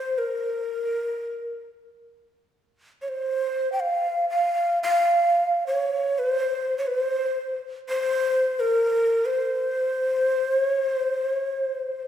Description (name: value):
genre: japanese traditional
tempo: free time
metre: none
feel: none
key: unclear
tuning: A4 = 439 Hz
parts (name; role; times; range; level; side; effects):
- breathy mellow shakuhachi; solo; 0.0-12.1 s; Bb4 to G5; -22 LUFS; equal; none
room: wet recital hall reverb, RT60 1.7 s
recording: recorded in a church or concert hall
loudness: -22 LUFS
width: side -10 dB against mid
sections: 0.0-12.1 A section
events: none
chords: none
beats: free time